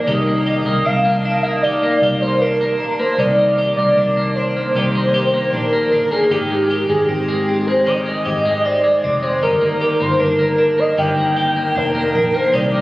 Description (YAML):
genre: dream pop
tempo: 77 BPM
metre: 4/4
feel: straight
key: C minor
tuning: A4 = 440 Hz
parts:
  - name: warm velvety synth lead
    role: melody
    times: 0.0-12.8 s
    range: G4 to G5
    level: -16 LUFS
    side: equal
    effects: chorus, shimmer reverb, digital delay
  - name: twelve-string electric guitar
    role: arpeggios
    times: 0.0-12.8 s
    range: Eb3 to G4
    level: -20 LUFS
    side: equal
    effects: lush chorus, shimmer reverb, digital delay
  - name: vintage muted fingered electric bass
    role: bass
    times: 0.0-12.8 s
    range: F1 to C2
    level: -24 LUFS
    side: equal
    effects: none
room: moderate huge ambient reverb, RT60 8.0 s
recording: recorded on a phone in the room, club reverb, compression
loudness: -14 LUFS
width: side -18 dB against mid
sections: 0.0-12.8 A section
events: none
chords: 0.1 Cm9; 6.3 Abmaj7; 9.4 Ebmaj7/G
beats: | 0.08 0.85 1.63 2.41 | 3.19 3.97 4.75 5.53 | 6.31 7.09 7.87 8.65 | 9.43 10.21 10.98 11.76 | 12.54